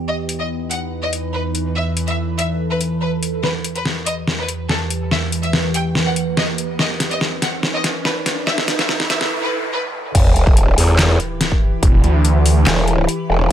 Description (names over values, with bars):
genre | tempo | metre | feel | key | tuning
heavy wobble dubstep | 143 BPM | 4/4 | half-time | E harmonic minor, E minor from 10.1 s | A4 = 443 Hz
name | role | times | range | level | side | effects
evolving wavetable pad | sustained chords | 0.0-13.5 s | E2 to B4 | -23 LUFS | right 2 dB | chorus, built-in reverb, phaser, sidechain pumping
clear studio violin section | melody | 0.1-9.8 s | A4 to G5 | -24 LUFS | left 1 dB | vintage 12-bit sampler grit, dub echo
dubstep drum kit | drums | 0.3-13.2 s | crash cymbal, handclaps, hi-hat, snare drum | -20 LUFS | left 1 dB | overdrive
riser, noise sweep and sub drop | sound effects | 5.4-11.8 s | none | -25 LUFS | equal | none
growl bass | bass | 10.1-13.5 s | E1 to E2 | -15 LUFS | equal | distortion, chorus, overdrive
electronic kick drum | drums | 10.1-11.9 s | none | -14 LUFS | equal | none
snarling distorted saw bass | bass | 11.8-12.7 s | E1 to D2 | -13 LUFS | equal | distortion, overdrive
room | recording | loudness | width
digital ambience | high-pass filter | -16 LUFS | side -10 dB against mid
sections
0.0-3.4 A section; 3.4-10.1 B section; 10.1-13.5 C section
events
build-up 3.4-10.1; drum fill 3.4-9.3; filter sweep on ambient pad 3.4-10.1; riser 5.4-9.3; noise sweep 8.5-10.1; break 9.3-10.1; drop 10.1-13.5; impact 10.1-11.8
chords
0.1 B/E; 1.8 Asus2/E; 3.4 Em; 6.8 B/E; 8.5 Asus2/E; 10.1 Em